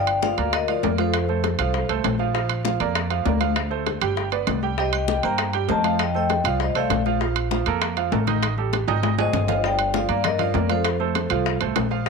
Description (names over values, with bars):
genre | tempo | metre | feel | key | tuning
latin, salsa | 198 BPM | 4/4 | straight | G minor | A4 = 439 Hz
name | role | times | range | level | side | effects
vibraphone with medium mallets | melody | 0.0-1.9, 4.8-7.0, 9.2-11.6 s | A4 to Bb5 | -25 LUFS | left 6 dB | none
bright baby grand piano | accompaniment | 0.0-12.1 s | Eb3 to G5 | -26 LUFS | right 14 dB | none
upright bass | bass | 0.0-12.1 s | G1 to G2 | -26 LUFS | equal | none
congas | percussion | 0.1-12.1 s | none | -29 LUFS | left 19 dB | none
timbales | percussion | 0.1-11.9 s | none | -28 LUFS | right 16 dB | none
bongos | percussion | 0.2-12.1 s | none | -31 LUFS | left 15 dB | none
room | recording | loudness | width
light reverb, small room ambience | 1960s-style stereo with parts hard left and right | -20 LUFS | side -4 dB against mid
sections
0.0-9.6 A section; 9.6-12.1 A section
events
drum fill 8.9-9.6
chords
0.0 Gm7; 1.1 F; 2.4 Bb; 3.6 Dm7; 4.2 G; 4.8 Cm7; 6.0 F9; 7.2 Bb5; 8.4 Ebadd11; 9.0 Ab6; 9.6 Gm7; 10.8 F